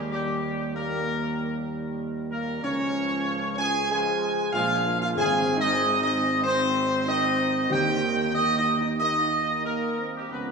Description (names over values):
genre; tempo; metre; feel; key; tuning
classical; 95 BPM; 4/4; straight; unclear; A4 = 440 Hz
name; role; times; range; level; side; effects
clear trombone section; sustained chords; 0.0-10.5 s; Eb3 to Db4; -32 LUFS; right 3 dB; none
dark French horn section; sustained chords; 0.0-10.5 s; G3 to Ab4; -30 LUFS; left 2 dB; none
mellow tuba; bass; 0.0-10.5 s; Ab1 to Eb2; -32 LUFS; right 3 dB; none
warm trumpet section; melody; 0.1-10.5 s; G4 to Ab5; -26 LUFS; equal; none
timpani; percussion; 5.2-8.6 s; Ab2 to Eb3; -37 LUFS; equal; none
room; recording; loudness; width
wet church reverb, RT60 3.1 s; small room ambience; -23 LUFS; side -4 dB against mid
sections
0.0-10.5 A section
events
none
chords
0.0 Eb; 2.6 Db; 5.2 Ab; 7.7 Eb